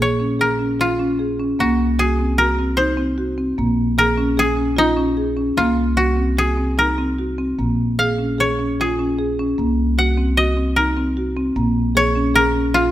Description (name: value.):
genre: contemporary instrumental, chamber music in an uneven meter.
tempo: 151 BPM.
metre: 5/4.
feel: straight.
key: Bb minor.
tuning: A4 = 442 Hz.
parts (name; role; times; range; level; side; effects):
koto; melody; 0.0-12.9 s; Eb4 to Gb5; -19 LUFS; left 1 dB; none.
marimba with medium mallets; arpeggios; 0.0-12.9 s; Bb3 to Ab4; -20 LUFS; equal; none.
upright bass; bass; 0.0-12.9 s; Bb1 to C2; -23 LUFS; equal; none.
room: light reverb.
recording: none.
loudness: -16 LUFS.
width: side -13 dB against mid.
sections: 0.0-12.9 A section.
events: none.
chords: 0.0 Bbm7; 1.6 C7(b5, no3); 3.6 Bbm7; 5.6 Cm7b5; 7.6 Bbm7; 9.6 Cm7b5; 11.6 Bbm7.